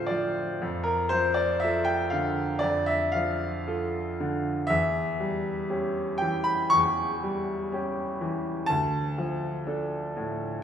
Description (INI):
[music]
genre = classical, romantic nocturne for solo piano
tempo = 60 BPM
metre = 4/4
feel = rubato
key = unclear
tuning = A4 = 440 Hz
[part]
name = bright baby grand piano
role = solo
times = 0.0-10.6 s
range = D2 to C#6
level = -25 LUFS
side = equal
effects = none
[sound]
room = wet recital hall reverb, RT60 1.7 s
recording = heard from further back in the room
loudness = -25 LUFS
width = side -8 dB against mid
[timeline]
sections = 0.0-10.6 A section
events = none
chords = 0.0 Dm; 0.6 Dm/F; 4.7 C#dim/E; 8.7 Dm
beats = | 0.62 1.63 2.64 3.67 | 4.69 5.69 6.71 7.71 | 8.69 9.67